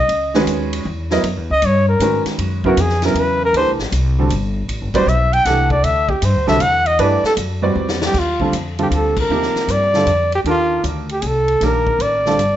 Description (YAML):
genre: modal jazz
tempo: 156 BPM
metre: 3/4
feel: swing 66% on 8ths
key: Eb lydian from 8.1 s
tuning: A4 = 438 Hz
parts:
  - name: breathy trumpet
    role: melody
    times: 0.0-12.6 s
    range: F4 to G5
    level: -17 LUFS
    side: equal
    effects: plate reverb
  - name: upright bass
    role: bass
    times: 0.0-12.6 s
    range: D1 to G#2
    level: -20 LUFS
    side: equal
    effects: none
  - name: swinging big-band drum kit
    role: drums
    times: 0.1-12.5 s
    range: crash cymbal, hi-hat, kick drum, ride cymbal, snare drum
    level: -27 LUFS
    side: left 2 dB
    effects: none
  - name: clear upright piano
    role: accompaniment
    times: 0.3-12.4 s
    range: C3 to D#5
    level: -20 LUFS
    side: right 3 dB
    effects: none
room: moderate large studio reverb, RT60 0.9 s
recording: nothing above 7.8 kHz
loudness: -14 LUFS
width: side -12 dB against mid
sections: 0.0-8.1 A section; 8.1-12.6 B section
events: trumpet solo 0.0-8.1; drum fill 7.8-8.1; band accent 9.1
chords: 0.0 F#9sus4; 3.5 D9sus4; 8.1 Ebmaj9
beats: | 0.09 0.48 0.86 | 1.24 1.63 2.01 | 2.39 2.78 3.16 | 3.54 3.92 4.31 | 4.69 5.07 5.46 | 5.84 6.22 6.61 | 6.99 7.38 7.76 | 8.14 8.53 8.91 | 9.30 9.69 10.07 | 10.46 10.84 11.23 | 11.62 12.00 12.39